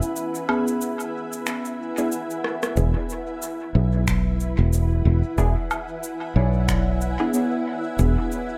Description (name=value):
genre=ambient dub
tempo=92 BPM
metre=4/4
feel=swing 57% on 16ths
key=E mixolydian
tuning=A4 = 440 Hz
part: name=granular cloud pad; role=sustained chords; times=0.0-8.6 s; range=E4 to G#5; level=-32 LUFS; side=equal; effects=built-in reverb
part: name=soft synth bell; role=arpeggios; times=0.0-8.6 s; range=B3 to B5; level=-31 LUFS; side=equal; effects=chorus, dub echo
part: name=electronic cabasa, woodblock, finger snaps and rim click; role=drums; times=0.0-8.5 s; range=none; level=-33 LUFS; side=equal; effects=overdrive, dub echo
part: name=filtered dub chord stab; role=stabs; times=2.0-8.1 s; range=B3 to G#4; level=-31 LUFS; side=equal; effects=phaser, lush chorus, dub echo
part: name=fingered electric bass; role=bass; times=2.8-8.2 s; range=E1 to B1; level=-22 LUFS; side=equal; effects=none
part: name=electronic kick drum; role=drums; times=2.8-8.1 s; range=none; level=-30 LUFS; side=equal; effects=none
room=light reverb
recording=echo-heavy mix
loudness=-23 LUFS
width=mono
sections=0.0-2.8 A section; 2.8-8.6 B section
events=drum fill 2.4-2.8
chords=0.0 E7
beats=| 0.17 0.82 1.47 2.12 | 2.77 3.43 4.08 4.73 | 5.38 6.03 6.69 7.34 | 7.99